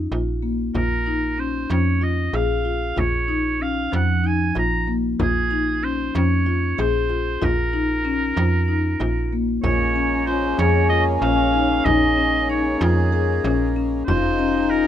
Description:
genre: contemporary instrumental, chamber music in an uneven meter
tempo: 189 BPM (eighths)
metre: 7/8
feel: straight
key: Bb minor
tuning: A4 = 440 Hz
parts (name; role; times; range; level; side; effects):
- marimba with soft mallets; arpeggios; 0.0-14.9 s; F3 to Ab4; -23 LUFS; left 5 dB; none
- slap-like FM bass; bass; 0.0-14.9 s; F1 to F2; -23 LUFS; right 2 dB; none
- clear oboe; melody; 0.8-14.9 s; Ab4 to Bb5; -24 LUFS; right 3 dB; none
- frame drum; percussion; 0.8-14.4 s; none; -28 LUFS; left 2 dB; none
- warm French horn; second line; 9.6-14.9 s; Db4 to Eb4; -24 LUFS; left 3 dB; none
- pedal harmonium; sustained chords; 9.6-14.9 s; F3 to Ab4; -29 LUFS; equal; none
room: moderate studio reverb, RT60 0.6 s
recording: none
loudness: -18 LUFS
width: side -10 dB against mid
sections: 0.0-9.6 A section; 9.6-14.9 B section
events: none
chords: 0.0 Bbm; 9.6 Bbm7; 14.1 Fm7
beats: 0.12 0.44 | 0.75 1.07 1.39 1.71 2.02 2.34 2.66 | 2.98 3.29 3.61 3.93 4.25 4.56 4.88 | 5.20 5.51 5.83 6.15 6.47 6.78 7.10 | 7.42 7.74 8.05 8.37 8.69 9.00 9.32 | 9.64 9.95 10.27 10.59 10.91 11.22 11.54 | 11.86 12.17 12.49 12.81 13.12 13.44 13.76 | 14.08 14.39 14.71

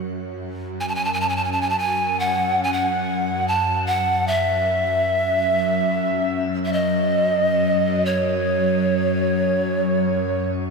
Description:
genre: world meditative, free-time meditation music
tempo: free time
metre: none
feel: none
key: F# dorian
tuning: A4 = 440 Hz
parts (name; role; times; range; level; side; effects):
- bowed-like drone; drone; 0.0-10.7 s; F#2; -23 LUFS; left 1 dB; built-in reverb, phaser
- koto; texture; 0.0-0.5 s; none; barely audible; none; none
- breathy bright pan flute; melody; 0.8-10.5 s; C#5 to A5; -20 LUFS; right 1 dB; shimmer reverb, diffuse ambient delay
room: wet church reverb, RT60 3.0 s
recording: none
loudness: -18 LUFS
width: side -4 dB against mid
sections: 0.1-10.7 A section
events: none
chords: none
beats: free time

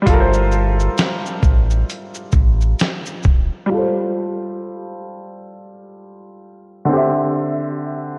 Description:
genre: lo-fi hip hop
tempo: 66 BPM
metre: 4/4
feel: swing 61% on 16ths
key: unclear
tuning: A4 = 440 Hz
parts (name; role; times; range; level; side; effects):
- clear upright piano; accompaniment; 0.0-8.2 s; D3 to E5; -23 LUFS; equal; low-pass filter
- sub bass with octave; bass; 0.1-3.5 s; D1 to A1; -19 LUFS; equal; none
- dusty soul sampler-style drum kit; drums; 0.1-3.5 s; hi-hat, kick drum, shaker, snare drum; -19 LUFS; equal; none
room: moderate lush hall reverb, RT60 2.5 s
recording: dreamy mix soaked in reverb, cassette tape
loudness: -18 LUFS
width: mono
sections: 0.0-3.7 A section; 3.7-8.2 B section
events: none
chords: 0.0 G9sus4; 6.9 D9sus4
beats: | 0.07 0.97 1.88 2.79 | 3.70 4.61 5.52 6.43 | 7.34

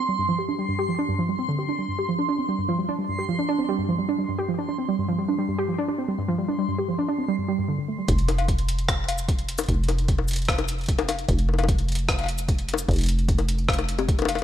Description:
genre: IDM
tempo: 150 BPM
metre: 4/4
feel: straight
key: unclear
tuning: A4 = 439 Hz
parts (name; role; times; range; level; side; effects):
- warbly dusty pluck; arpeggios; 0.0-8.1 s; G2 to G4; -24 LUFS; right 2 dB; chorus, ping-pong delay
- backwards swelling texture; texture; 0.0-8.1 s; C6; -32 LUFS; right 2 dB; built-in reverb
- deep acid bass; bass; 8.1-14.4 s; F1; -25 LUFS; equal; none
- electronic kick drum; drums; 8.1-14.2 s; none; -24 LUFS; equal; overdrive, studio reverb
- jungle sampler-style drum kit; drums; 8.1-14.4 s; bongos, cabasa, cowbell, hi-hat, rim click; -27 LUFS; left 4 dB; overdrive, studio reverb, ping-pong delay
room: light reverb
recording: none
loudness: -22 LUFS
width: side -10 dB against mid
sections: 0.0-8.1 A section; 8.1-14.4 B section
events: none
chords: 0.0 Fsus2 (rootless); 1.7 G5; 8.1 N.C.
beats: | 0.09 0.49 0.89 1.29 | 1.69 2.09 2.49 2.89 | 3.29 3.69 4.09 4.49 | 4.89 5.29 5.69 6.09 | 6.49 6.89 7.29 7.69 | 8.09 8.49 8.89 9.29 | 9.69 10.09 10.49 10.89 | 11.29 11.69 12.09 12.49 | 12.89 13.29 13.69 14.09

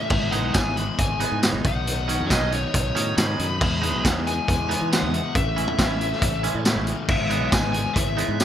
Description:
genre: indie rock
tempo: 138 BPM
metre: 4/4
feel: straight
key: E major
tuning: A4 = 440 Hz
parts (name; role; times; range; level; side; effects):
- smooth overdriven lead guitar; melody; 0.0-8.4 s; C#5 to B5; -28 LUFS; left 2 dB; analog delay
- tonewheel organ; sustained chords; 0.0-8.4 s; C#4 to B5; -38 LUFS; right 1 dB; none
- crunchy overdriven guitar; riff; 0.0-8.4 s; G#2 to E4; -30 LUFS; left 7 dB; none
- modern bright fingered electric bass; bass; 0.1-8.4 s; G#1 to E3; -28 LUFS; equal; none
- raw garage drum kit; drums; 0.1-8.4 s; crash cymbal, hi-hat, kick drum, snare drum, tambourine; -24 LUFS; equal; none
- twangy electric guitar; riff; 0.3-8.4 s; D#3 to E4; -30 LUFS; right 7 dB; wide subtle chorus
room: little or no reverb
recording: none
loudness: -20 LUFS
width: side -10 dB against mid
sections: 0.0-8.4 A section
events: none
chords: 0.1 Emaj7/G#; 1.6 Badd9; 3.6 Emaj7; 5.3 Amaj7; 7.1 Emaj7/G#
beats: | 0.10 0.54 0.98 1.42 | 1.86 2.30 2.73 3.17 | 3.61 4.04 4.48 4.91 | 5.35 5.78 6.22 6.65 | 7.08 7.52 7.95 8.39

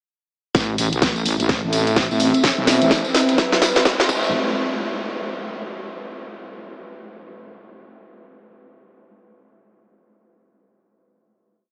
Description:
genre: bass house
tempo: 127 BPM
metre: 4/4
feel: swing 61% on 16ths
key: A minor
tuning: A4 = 440 Hz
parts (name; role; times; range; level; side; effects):
- dark analog pad; sustained chords; 1.3-4.3 s; C4 to E5; -25 LUFS; equal; chorus, sidechain pumping
- wobble bass; bass; 0.5-4.3 s; A1 to B1; -25 LUFS; equal; chorus, sidechain pumping
- electronic kick drum; drums; 0.5-4.2 s; none; -23 LUFS; equal; none
- garage drum kit; drums; 0.5-4.1 s; hi-hat, snare drum; -24 LUFS; equal; none
- tambourine; percussion; 0.5-4.3 s; none; -31 LUFS; equal; none
- riser; sound effects; 2.4-4.3 s; none; -34 LUFS; equal; none
room: wet huge ambient reverb, RT60 8.3 s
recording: dreamy mix soaked in reverb, high-pass filter, small speaker sound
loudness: -19 LUFS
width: mono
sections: 0.5-4.3 build; 4.3-6.2 final hit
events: build-up 0.5-4.3; drum fill 0.5-4.3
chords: 0.5 Am; 4.3 N.C.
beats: | 0.55 1.02 1.49 1.96 | 2.44 2.91 3.38 3.85 | 4.33

